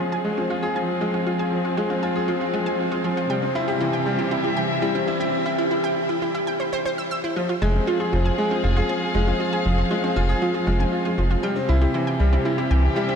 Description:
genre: piano and strings electronica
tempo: 118 BPM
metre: 4/4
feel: straight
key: F harmonic minor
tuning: A4 = 445 Hz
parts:
  - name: warm chamber string section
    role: sustained chords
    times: 0.0-13.2 s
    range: C3 to F5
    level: -28 LUFS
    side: equal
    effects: low-pass filter
  - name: analog pluck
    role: arpeggios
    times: 0.0-13.2 s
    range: E4 to E6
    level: -28 LUFS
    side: right 2 dB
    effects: chorus, analog delay
  - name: bright upright piano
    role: riff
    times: 0.0-13.2 s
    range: E3 to Ab4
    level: -23 LUFS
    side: left 1 dB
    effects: analog delay
  - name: round analog bass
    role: bass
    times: 7.6-12.9 s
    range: F1 to C2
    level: -20 LUFS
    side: equal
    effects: none
room: wet huge ambient reverb, RT60 7.4 s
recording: dreamy mix soaked in reverb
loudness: -20 LUFS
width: side -7 dB against mid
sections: 0.0-7.4 A section; 7.4-13.2 B section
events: build-up 0.0-7.4; filter sweep on string section 0.0-7.4; drop 7.4-13.2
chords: 0.0 Fm; 3.3 C; 7.4 Fm; 11.4 C

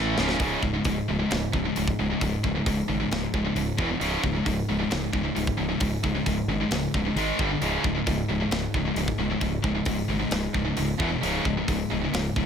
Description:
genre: heavy metal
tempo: 133 BPM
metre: 4/4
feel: straight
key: C# minor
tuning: A4 = 441 Hz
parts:
  - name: heavy high-gain guitar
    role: riff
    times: 0.0-12.5 s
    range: C#2 to A3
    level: -29 LUFS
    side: right 13 dB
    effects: distortion
  - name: scooped high-gain guitar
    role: riff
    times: 0.0-12.5 s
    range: C#2 to A3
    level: -28 LUFS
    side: left 8 dB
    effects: distortion
  - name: growling fingered electric bass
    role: bass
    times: 0.0-12.5 s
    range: C#1 to A1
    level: -31 LUFS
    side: equal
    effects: overdrive
  - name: tight metal drum kit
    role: drums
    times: 0.2-12.5 s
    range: hi-hat, kick drum, snare drum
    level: -30 LUFS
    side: equal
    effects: none
room: light reverb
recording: none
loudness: -23 LUFS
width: side -7 dB against mid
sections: 0.4-12.5 A section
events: drum fill 0.0-0.4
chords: 0.4 C#5; 3.8 E5; 4.0 C#5; 7.2 G#5; 7.4 G5; 7.6 C#5; 11.0 E5; 11.2 C#5

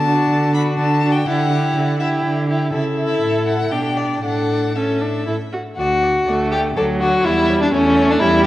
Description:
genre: quick classical-period movement for string quartet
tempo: 120 BPM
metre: 3/4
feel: uneven beats, rubato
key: D major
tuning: A4 = 441 Hz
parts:
  - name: clear violin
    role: melody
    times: 0.0-8.3 s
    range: C#5 to B5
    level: -25 LUFS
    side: left 4 dB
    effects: none
  - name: clear cello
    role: bass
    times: 0.0-8.5 s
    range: D2 to D3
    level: -21 LUFS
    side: right 2 dB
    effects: none
  - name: rich violin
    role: second line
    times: 0.1-8.5 s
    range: C#4 to A4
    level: -19 LUFS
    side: left 2 dB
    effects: none
  - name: rich viola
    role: accompaniment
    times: 0.1-8.5 s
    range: F#3 to F#4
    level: -22 LUFS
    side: right 1 dB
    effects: none
room: moderate concert hall reverb, RT60 2.3 s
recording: worn, warbling old tape, cassette tape, warbly pitch drift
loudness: -15 LUFS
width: side -15 dB against mid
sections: 0.0-5.8 A section; 5.8-8.5 B section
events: none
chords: 0.0 D; 1.3 Em7/D; 2.7 A/C#; 3.7 G/B; 4.2 Asus4; 5.3 A5; 5.8 D; 7.3 C#dim/E

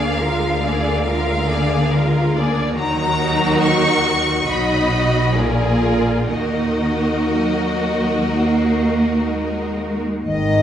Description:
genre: classical, slow romantic movement for symphony orchestra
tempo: 59-72 BPM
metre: 4/4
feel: rubato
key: Eb minor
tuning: A4 = 439 Hz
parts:
  - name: warm symphonic violin section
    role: melody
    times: 0.0-10.6 s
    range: D5 to Db6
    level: -24 LUFS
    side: left 2 dB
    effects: none
  - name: warm symphonic violin section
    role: second line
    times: 0.0-10.1 s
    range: Gb4 to D#5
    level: -23 LUFS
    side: left 2 dB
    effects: none
  - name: warm symphonic viola section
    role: accompaniment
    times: 0.0-10.0 s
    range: Gb3 to F4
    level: -22 LUFS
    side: right 1 dB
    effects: none
  - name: rich symphonic cello section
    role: bass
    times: 0.0-10.6 s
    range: G#2 to Bb3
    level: -22 LUFS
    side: right 1 dB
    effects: none
  - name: rich symphonic double bass section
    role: bass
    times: 0.0-10.6 s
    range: G#1 to Eb2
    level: -24 LUFS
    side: right 2 dB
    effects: none
  - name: mellow silver concert flute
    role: second line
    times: 10.3-10.6 s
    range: D#5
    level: -20 LUFS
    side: equal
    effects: none
  - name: mellow French horn section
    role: sustained chords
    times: 10.3-10.6 s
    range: D#3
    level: -20 LUFS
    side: left 4 dB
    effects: none
room: wet recital hall reverb, RT60 1.4 s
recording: recorded in a church or concert hall, nothing above 10.6 kHz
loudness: -16 LUFS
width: side -10 dB against mid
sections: 0.0-10.3 A section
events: none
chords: 0.0 Bb7/D; 2.8 Ebm; 4.5 B; 5.4 Bb7; 6.3 Ebm

